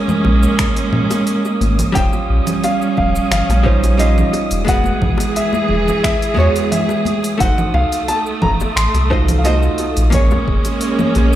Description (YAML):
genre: sunset chillout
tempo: 88 BPM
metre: 4/4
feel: straight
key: unclear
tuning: A4 = 439 Hz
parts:
  - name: vintage hollow-body jazz guitar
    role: accompaniment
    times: 0.0-11.4 s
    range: G3 to Eb5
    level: -22 LUFS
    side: moving between left 3 dB and right 5 dB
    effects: auto-pan, tape echo
  - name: rich studio string section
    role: sustained chords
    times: 0.0-11.4 s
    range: E3 to G#4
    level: -20 LUFS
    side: right 2 dB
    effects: none
  - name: wind-like tuned noise texture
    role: texture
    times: 0.0-11.4 s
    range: Eb6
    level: -28 LUFS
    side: right 2 dB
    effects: built-in reverb
  - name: smooth R&B drum kit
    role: drums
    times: 0.1-11.4 s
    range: congas, finger snaps, hi-hat, shaker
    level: -23 LUFS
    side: right 2 dB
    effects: none
  - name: congas and bongos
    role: percussion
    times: 0.1-11.3 s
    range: none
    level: -25 LUFS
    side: left 4 dB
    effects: none
  - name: warm sub bass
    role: bass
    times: 0.2-11.4 s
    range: Eb1 to Bb2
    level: -15 LUFS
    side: equal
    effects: none
  - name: electronic kick drum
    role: drums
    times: 0.6-10.6 s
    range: none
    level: -20 LUFS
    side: equal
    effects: none
  - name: warm grand piano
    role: melody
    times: 1.9-11.4 s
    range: C5 to C6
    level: -21 LUFS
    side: left 1 dB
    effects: digital delay
room: little or no reverb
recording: played on a big sound system in a bare room, large studio reverb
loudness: -13 LUFS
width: side -12 dB against mid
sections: 0.0-11.4 A section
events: none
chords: 0.0 Bbm9; 1.9 Eb13; 4.7 Emaj9; 7.4 F7b9; 10.1 Bbm7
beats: 0.59 1.27 | 1.95 2.63 3.31 4.00 | 4.68 5.36 6.04 6.72 | 7.40 8.09 8.77 9.45 | 10.13 10.81